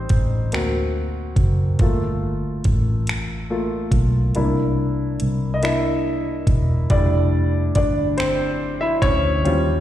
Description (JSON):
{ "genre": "slow six-eight R&B", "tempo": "47 BPM (dotted quarters)", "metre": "6/8", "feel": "straight", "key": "unclear", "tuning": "A4 = 439 Hz", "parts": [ { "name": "clear concert grand piano", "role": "accompaniment", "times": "0.0-9.8 s", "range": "G3 to E5", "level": "-22 LUFS", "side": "equal", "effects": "slapback echo" }, { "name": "vintage muted fingered electric bass", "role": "bass", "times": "0.0-9.8 s", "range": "E1 to Eb2", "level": "-21 LUFS", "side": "equal", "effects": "none" }, { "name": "smooth R&B drum kit", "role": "drums", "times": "0.1-9.7 s", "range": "finger snaps, hi-hat, kick drum", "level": "-21 LUFS", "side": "equal", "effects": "none" } ], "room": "little or no reverb", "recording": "live gig heard through the venue's PA, recital hall reverb", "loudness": "-18 LUFS", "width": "side -12 dB against mid", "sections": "0.0-9.8 A section", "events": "grand piano solo 0.0-9.8", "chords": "0.0 Am7b5; 0.5 D7b13; 1.8 Gm9; 4.4 C9; 6.9 Fmaj9" }